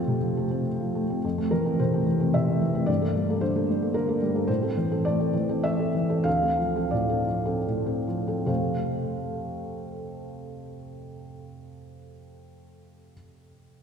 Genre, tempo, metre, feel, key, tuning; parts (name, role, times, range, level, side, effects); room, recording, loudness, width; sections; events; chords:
neoclassical minimalist piano; 70-114 BPM; 3/4; rubato; F major; A4 = 439 Hz
felt-muted upright piano; solo; 0.0-13.8 s; D2 to F5; -24 LUFS; equal
wet church reverb, RT60 3.0 s; recorded in a church or concert hall; -23 LUFS; side -6 dB against mid
0.0-1.2 A section; 1.2-8.5 B section; 8.5-13.3 C section
slowing down 3.7-8.5
0.0 F; 1.2 Fmaj7 (rootless); 2.9 Gmadd9; 4.5 Am; 6.3 Dm7; 8.5 F